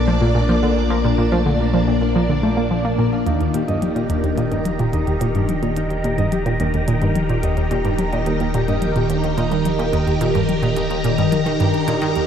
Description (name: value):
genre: ambient, sequencer-driven space music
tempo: 108 BPM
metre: 4/4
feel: straight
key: Bb major, Eb major from 3.3 s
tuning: A4 = 439 Hz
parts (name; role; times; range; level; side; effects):
- phased string machine; sustained chords; 0.0-12.3 s; Bb2 to Bb5; -21 LUFS; equal; ensemble chorus, phaser
- Celtic harp; arpeggios; 0.0-12.3 s; F3 to Eb5; -24 LUFS; left 3 dB; auto-pan, low-pass filter, analog delay
- warm sub bass; bass; 0.0-12.3 s; Eb1 to Bb1; -26 LUFS; equal; none
- analog pluck; riff; 0.1-12.3 s; Eb2 to Bb3; -21 LUFS; right 1 dB; chorus, analog delay
- minimal click drum kit; percussion; 3.3-12.3 s; hi-hat, toms; -29 LUFS; left 3 dB; overdrive, analog delay
room: moderate huge ambient reverb, RT60 8.3 s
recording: in a vast, echoing space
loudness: -16 LUFS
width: side -8 dB against mid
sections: 0.0-3.3 A section; 3.3-12.3 B section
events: none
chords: 0.0 Bbmaj7; 3.3 Eb